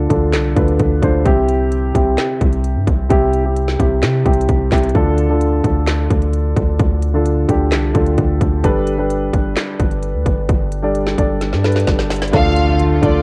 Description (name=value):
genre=hip hop, trap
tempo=130 BPM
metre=4/4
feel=half-time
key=D dorian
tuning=A4 = 440 Hz
part: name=dark baby grand piano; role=accompaniment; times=0.0-13.2 s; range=C3 to D5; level=-20 LUFS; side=equal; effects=cassette tape
part: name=long sustained 808-style bass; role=bass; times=0.0-13.2 s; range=G1 to C3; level=-20 LUFS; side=equal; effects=none
part: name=trap drum kit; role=drums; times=0.1-13.1 s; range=handclaps, hi-hat, kick drum, snare drum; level=-21 LUFS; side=equal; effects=cassette tape
part: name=rich studio violin section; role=melody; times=12.3-13.2 s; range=D5 to F5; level=-21 LUFS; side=equal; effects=cassette tape, analog delay
part: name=warm studio string section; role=sustained chords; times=12.3-13.2 s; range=D3 to F4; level=-24 LUFS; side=equal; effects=cassette tape
part: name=impact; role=sound effects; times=12.5-13.2 s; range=none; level=-27 LUFS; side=equal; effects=none
room=studio reverb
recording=home recording on cassette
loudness=-16 LUFS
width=mono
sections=0.0-12.3 A section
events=drum fill 11.4-12.3; impact 12.3-13.2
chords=0.0 Dm; 1.3 C; 4.9 Dm; 8.6 Gadd9; 12.3 Dm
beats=0.33 0.80 | 1.26 1.72 2.18 2.64 | 3.10 3.56 4.03 4.49 | 4.95 5.41 5.87 6.33 | 6.80 7.26 7.72 8.18 | 8.64 9.10 9.56 10.03 | 10.49 10.95 11.41 11.87 | 12.33 12.80